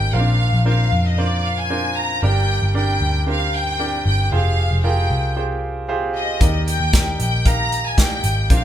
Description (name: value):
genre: piano-driven pop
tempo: 115 BPM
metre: 4/4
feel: straight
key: Eb major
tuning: A4 = 441 Hz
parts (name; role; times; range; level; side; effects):
- warm studio violin section; melody; 0.0-8.6 s; D5 to Bb5; -22 LUFS; left 1 dB; none
- clear grand piano; accompaniment; 0.0-8.6 s; G2 to F5; -24 LUFS; right 2 dB; none
- vintage muted picked electric bass; bass; 0.0-8.6 s; F1 to F2; -20 LUFS; equal; none
- natural country drum kit; drums; 6.4-8.6 s; hi-hat, kick drum, snare drum; -17 LUFS; equal; none
room: wet large studio reverb, RT60 1.5 s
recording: band playing live in one room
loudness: -16 LUFS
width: side -11 dB against mid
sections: 0.0-8.6 A section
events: none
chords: 0.1 Bbadd9; 2.2 Gm; 4.3 Fmadd9; 6.4 Ebmaj7